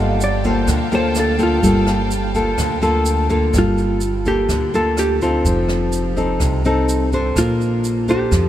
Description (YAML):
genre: bossa nova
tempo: 126 BPM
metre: 4/4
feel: straight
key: G minor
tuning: A4 = 440 Hz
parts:
  - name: vintage hollow-body jazz guitar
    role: melody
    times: 0.0-8.5 s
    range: F4 to Eb5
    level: -22 LUFS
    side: right 1 dB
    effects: none
  - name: nylon-string guitar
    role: accompaniment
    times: 0.0-8.5 s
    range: C3 to C5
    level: -18 LUFS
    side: left 1 dB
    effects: none
  - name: warm studio violin section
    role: sustained chords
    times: 0.0-3.5 s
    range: F5 to A5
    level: -30 LUFS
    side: equal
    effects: none
  - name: upright bass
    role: bass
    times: 0.0-8.5 s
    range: F1 to F2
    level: -21 LUFS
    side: equal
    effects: none
  - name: jazz brush drum kit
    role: drums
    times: 0.2-8.4 s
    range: hi-hat, kick drum, rim click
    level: -26 LUFS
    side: equal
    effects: none
  - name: tube shaker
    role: percussion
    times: 0.2-8.5 s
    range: none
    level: -33 LUFS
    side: right 6 dB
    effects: none
room: moderate huge ambient reverb, RT60 8.2 s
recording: dreamy mix soaked in reverb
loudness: -15 LUFS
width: side -12 dB against mid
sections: 0.0-3.5 A section; 3.5-8.5 B section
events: hollow-body jazz guitar solo 0.0-3.5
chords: 0.0 Gm9; 5.4 F7; 7.4 Bbmaj9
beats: 0.20 0.68 1.15 | 1.63 2.10 2.58 3.06 | 3.54 4.01 4.49 4.97 | 5.45 5.92 6.40 6.88 | 7.36 7.84 8.32